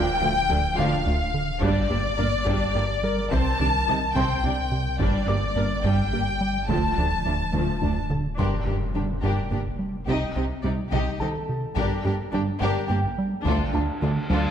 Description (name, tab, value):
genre	cinematic, hybrid orchestral and electronic film score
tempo	71 BPM (dotted quarters)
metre	6/8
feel	straight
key	G minor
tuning	A4 = 440 Hz
part	rich chamber violin section	melody	0.0-14.5 s	F4 to A5	-30 LUFS	left 3 dB	none
part	warm symphonic violin section	second line	0.0-14.5 s	D4 to A5	-31 LUFS	left 4 dB	none
part	rich symphonic viola section	accompaniment	0.0-14.5 s	F3 to Eb5	-32 LUFS	right 1 dB	none
part	glassy wavetable pluck	arpeggios	0.0-14.5 s	C3 to G4	-32 LUFS	left 1 dB	chorus, digital delay
part	rubbery square bass	riff	0.0-14.5 s	C2 to G3	-28 LUFS	right 1 dB	none
part	sub bass with octave	bass	0.0-8.4 s	D1 to C2	-32 LUFS	equal	none
part	felt-muted upright piano	texture	0.0-14.5 s	A4 to D6	-37 LUFS	equal	digital delay
part	clear symphonic cello section	bass	0.2-14.4 s	D2 to C3	-32 LUFS	right 2 dB	none
part	warm symphonic double bass section	bass	0.2-14.4 s	G1 to D2	-32 LUFS	right 2 dB	none
part	taiko ensemble	drums	1.6-14.5 s	none	-31 LUFS	equal	none
part	impact and reverse cymbal	sound effects	8.4-10.1, 13.8-14.5 s	none	-32 LUFS	equal	none
room	moderate scoring stage reverb, RT60 1.8 s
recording	none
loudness	-22 LUFS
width	side -9 dB against mid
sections	0.0-8.4 A section; 8.4-14.5 B section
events	drum fill 7.5-8.4, 14.3; impact 8.4-10.1; reverse cymbal 13.8-14.5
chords	0.0 Dm; 1.6 Gm; 3.3 Cmadd9; 5.0 Gm; 6.7 Dm; 8.4 Gm; 10.1 Cm; 11.8 Gm; 13.5 Dm